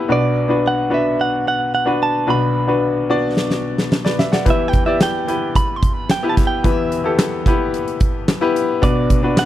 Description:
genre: piano-driven pop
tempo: 110 BPM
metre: 4/4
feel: straight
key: E minor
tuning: A4 = 440 Hz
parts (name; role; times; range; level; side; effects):
- bright grand piano; accompaniment; 0.0-9.5 s; B1 to F#5; -18 LUFS; left 2 dB; none
- direct-recorded clean electric guitar; melody; 0.1-9.5 s; D5 to C6; -20 LUFS; right 4 dB; vibrato effect
- huge arena drum kit; drums; 3.4-9.5 s; handclaps, hi-hat, kick drum, snare drum; -18 LUFS; right 1 dB; none
room: light reverb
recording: dry, close 1970s-style studio recording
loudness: -15 LUFS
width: side -13 dB against mid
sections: 0.0-9.5 A section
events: drum fill 3.4-4.5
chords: 0.1 Bm; 4.5 Em; 8.8 Bm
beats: | 0.10 0.64 1.19 1.73 | 2.28 2.83 3.37 3.92 | 4.46 5.01 5.55 6.10 | 6.64 7.19 7.73 8.28 | 8.82 9.37

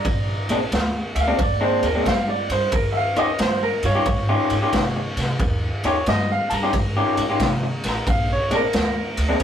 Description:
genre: electric blues shuffle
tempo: 90 BPM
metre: 4/4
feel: swing 66% on 8ths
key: unclear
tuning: A4 = 440 Hz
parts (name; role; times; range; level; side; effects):
- bright upright piano; accompaniment; 0.0-9.4 s; F4 to Bb5; -24 LUFS; right 1 dB; none
- upright bass; bass; 0.0-9.4 s; A1 to C3; -26 LUFS; equal; none
- raw garage drum kit; drums; 0.0-9.4 s; kick drum, ride cymbal, snare drum; -23 LUFS; equal; none
- electric guitar through a small old amp; riff; 0.5-9.4 s; Bb2 to G4; -22 LUFS; left 2 dB; none
room: moderate booth ambience, RT60 0.3 s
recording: rough rehearsal-room recording, warm saturation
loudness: -18 LUFS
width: side -9 dB against mid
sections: 0.0-9.4 A section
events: none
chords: 0.0 Bb9; 2.7 Eb9; 8.1 Bb9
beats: | 0.05 0.72 1.38 2.05 | 2.72 3.39 4.06 4.72 | 5.39 6.06 6.73 7.40 | 8.07 8.73 9.40

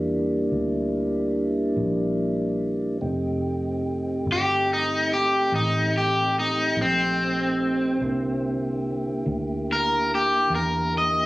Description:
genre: slow blues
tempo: 48 BPM (dotted quarters)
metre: 12/8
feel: straight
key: C mixolydian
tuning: A4 = 441 Hz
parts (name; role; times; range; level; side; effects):
- tonewheel organ; sustained chords; 0.0-11.3 s; D3 to G4; -26 LUFS; equal; slow rotary speaker
- vintage muted fingered electric bass; bass; 0.0-11.3 s; F1 to E2; -30 LUFS; equal; none
- overdriven semi-hollow guitar; melody; 4.3-11.3 s; C4 to Eb5; -22 LUFS; equal; none
room: moderate club reverb, RT60 0.6 s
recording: recorded on a phone in the room, club reverb, compression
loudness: -21 LUFS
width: side -19 dB against mid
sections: 0.0-11.3 A section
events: overdriven electric guitar solo 0.0-11.3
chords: 0.0 C9 (rootless); 3.0 F9; 8.0 C9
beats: 0.52 1.77 | 3.02 4.27 5.52 6.76 | 8.01 9.26 10.51

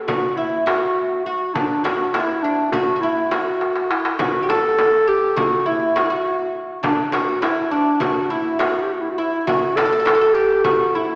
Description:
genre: Turkish makam ensemble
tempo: 204 BPM (eighths)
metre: 9/8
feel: straight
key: unclear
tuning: A4 = 440 Hz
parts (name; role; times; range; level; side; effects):
- mellow clarinet; melody; 0.1-11.2 s; D4 to A4; -19 LUFS; equal; none
- oud; second line; 0.1-11.2 s; D4 to A4; -21 LUFS; equal; none
- darbuka; percussion; 0.1-11.0 s; none; -26 LUFS; equal; none
- frame drum; percussion; 0.1-10.8 s; none; -28 LUFS; equal; none
room: wet concert hall reverb, RT60 2.2 s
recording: recorded in a church or concert hall, small speaker sound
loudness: -16 LUFS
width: side -27 dB against mid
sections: 0.0-11.2 A section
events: drum fill 3.6-4.2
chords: none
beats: 0.09 0.38 0.68 0.97 1.26 | 1.56 1.85 2.15 2.44 2.73 3.03 3.32 3.61 3.91 | 4.20 4.49 4.79 5.08 5.37 5.67 5.96 6.25 6.55 | 6.84 7.13 7.43 7.72 8.01 8.31 8.60 8.89 9.19 | 9.48 9.78 10.07 10.36 10.66 10.95

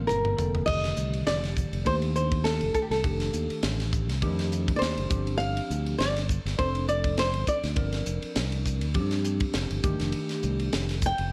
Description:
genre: electric jazz fusion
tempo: 102 BPM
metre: 4/4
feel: swing 55% on 16ths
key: unclear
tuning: A4 = 442 Hz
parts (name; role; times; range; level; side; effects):
- flamenco guitar; melody; 0.0-11.3 s; G4 to G5; -31 LUFS; equal; slapback echo
- bell-like tine electric piano; accompaniment; 0.0-10.9 s; D3 to Bb4; -36 LUFS; equal; phaser
- fingered electric bass; bass; 0.0-11.3 s; F1 to G2; -32 LUFS; equal; none
- tight funk drum kit; drums; 0.1-11.3 s; crash cymbal, hi-hat, kick drum, ride cymbal, snare drum, toms; -34 LUFS; equal; none
room: light reverb, small room ambience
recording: none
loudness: -27 LUFS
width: mono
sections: 0.7-11.3 A section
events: drum fill 0.0-0.7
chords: 0.0 Bbmaj9; 0.7 F13; 5.1 G7sus4; 9.8 F13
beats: 0.09 | 0.68 1.27 1.86 2.45 | 3.04 3.63 4.22 4.81 | 5.40 6.00 6.59 7.18 | 7.77 8.36 8.95 9.54 | 10.14 10.73 11.32

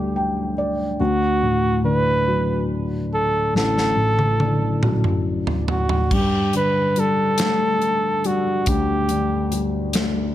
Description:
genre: six-eight pop ballad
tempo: 47 BPM (dotted quarters)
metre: 6/8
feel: straight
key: G major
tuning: A4 = 440 Hz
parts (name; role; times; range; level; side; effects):
- warm flugelhorn; melody; 0.0-9.6 s; F#4 to B4; -22 LUFS; right 1 dB; none
- felt-muted upright piano; accompaniment; 0.0-10.3 s; A1 to G5; -21 LUFS; left 1 dB; none
- modern studio drum kit; drums; 3.6-10.1 s; crash cymbal, hi-hat, kick drum, snare drum, toms; -23 LUFS; equal; none
room: light reverb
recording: none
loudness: -18 LUFS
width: side -12 dB against mid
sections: 0.0-6.1 A section; 6.1-10.3 B section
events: felt piano fill 0.0-1.0; drum fill 3.5-6.1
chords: 0.0 Gsus2; 1.0 D; 6.1 Gsus2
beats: | 1.00 2.27 | 3.55 4.83 | 6.11 7.40 | 8.68 9.95

